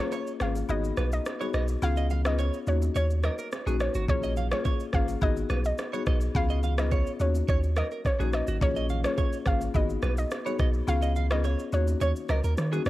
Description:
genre	afrobeats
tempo	106 BPM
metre	4/4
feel	straight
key	G# dorian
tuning	A4 = 440 Hz
part	soft round pluck	melody	0.0-12.9 s	C#5 to E#5	-33 LUFS	equal	chorus, cassette tape
part	marimba with medium mallets	accompaniment	0.0-12.9 s	A#3 to G#4	-33 LUFS	left 7 dB	cassette tape
part	bongos and congas	percussion	0.0-12.9 s	none	-42 LUFS	right 8 dB	none
part	direct-recorded clean electric guitar	riff	0.1-12.8 s	F#4 to E#5	-37 LUFS	right 6 dB	lush chorus, cassette tape, analog delay
part	afro-pop drum kit	drums	0.1-12.9 s	kick drum, rim click, shaker	-30 LUFS	equal	cassette tape
part	punchy sub bass	bass	0.4-12.9 s	G#1 to D#3	-27 LUFS	equal	none
room	little or no reverb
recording	home recording on cassette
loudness	-25 LUFS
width	side -16 dB against mid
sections	0.0-12.9 A section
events	break 0.0-4.1; kick muted 10.9-12.9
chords	0.0 A#m7; 0.7 G#m7; 1.8 C#7; 2.7 D#m7; 4.1 A#m7; 5.2 G#m7; 6.3 C#7; 7.2 D#m7; 8.6 A#m7; 9.7 G#m7; 10.9 C#7; 11.7 D#m7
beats	0.12 0.69 1.26 | 1.82 2.39 2.95 3.52 | 4.09 4.65 5.22 5.78 | 6.35 6.92 7.48 8.05 | 8.61 9.18 9.75 10.31 | 10.88 11.45 12.01 12.58

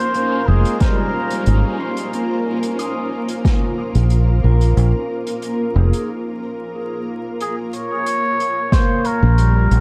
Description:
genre	ambient dub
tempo	91 BPM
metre	4/4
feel	straight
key	Bb dorian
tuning	A4 = 440 Hz
part	trumpet with cup mute	melody	0.0-1.8, 7.4-9.8 s	Ab4 to Db5	-24 LUFS	equal	dub echo
part	granular cloud pad	sustained chords	0.0-9.8 s	Bb3 to Ab5	-28 LUFS	equal	built-in reverb
part	backwards swelling texture	texture	0.0-6.1 s	Db4 to Eb4	-34 LUFS	equal	built-in reverb
part	soft-mallet drum kit	drums	0.1-9.8 s	hi-hat, snare drum	-32 LUFS	equal	dub echo
part	pedal steel guitar	arpeggios	0.2-9.8 s	G3 to Eb6	-28 LUFS	equal	tape echo
part	fingered electric bass	bass	0.5-9.8 s	F1 to Bb1	-15 LUFS	equal	none
part	electronic kick drum	drums	0.8-3.6, 8.7-8.9 s	none	-19 LUFS	equal	overdrive
room	small room ambience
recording	dark, warm production, vinyl crackle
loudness	-18 LUFS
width	mono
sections	0.0-7.4 A section; 7.4-9.8 B section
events	break 6.1-7.4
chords	0.0 Bbm7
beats	0.15 0.81 1.47 | 2.13 2.79 3.45 4.11 | 4.77 5.43 6.09 6.75 | 7.41 8.06 8.72 9.38

